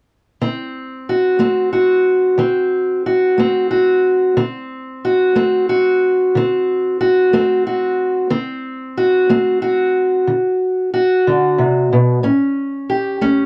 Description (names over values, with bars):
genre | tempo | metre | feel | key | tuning
blues | 61 BPM (dotted quarters) | 12/8 | straight | D mixolydian | A4 = 439 Hz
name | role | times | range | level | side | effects
fingerpicked steel-string acoustic guitar | solo | 0.4-13.5 s | A2 to G4 | -16 LUFS | equal | none
room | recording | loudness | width
wet booth ambience, RT60 0.2 s | dark, warm production | -16 LUFS | mono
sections
0.4-13.5 A section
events
none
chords
0.4 D7; 12.2 A7